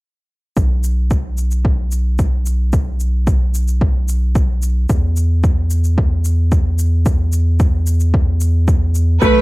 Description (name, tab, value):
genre	piano and strings electronica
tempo	111 BPM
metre	4/4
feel	straight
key	unclear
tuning	A4 = 439 Hz
part	round analog bass	bass	0.6-9.4 s	B1 to E2	-15 LUFS	equal	sidechain pumping
part	electronic kick drum	drums	0.6-9.3 s	none	-16 LUFS	equal	overdrive
part	shaker	drums	0.6-9.3 s	none	-32 LUFS	left 1 dB	overdrive
part	bright symphonic violin section	melody	9.2-9.4 s	B4	-13 LUFS	right 8 dB	none
part	lush unison pad	sustained chords	9.4 s	E3	-34 LUFS	left 2 dB	none
part	clear upright piano	riff	9.2-9.4 s	A3	-13 LUFS	left 4 dB	none
room	little or no reverb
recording	none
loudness	-14 LUFS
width	side -20 dB against mid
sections	0.6-9.4 A section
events	none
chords	none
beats	| 0.57 1.11 1.65 2.19 | 2.73 3.27 3.81 4.35 | 4.89 5.43 5.97 6.51 | 7.05 7.60 8.14 8.68 | 9.22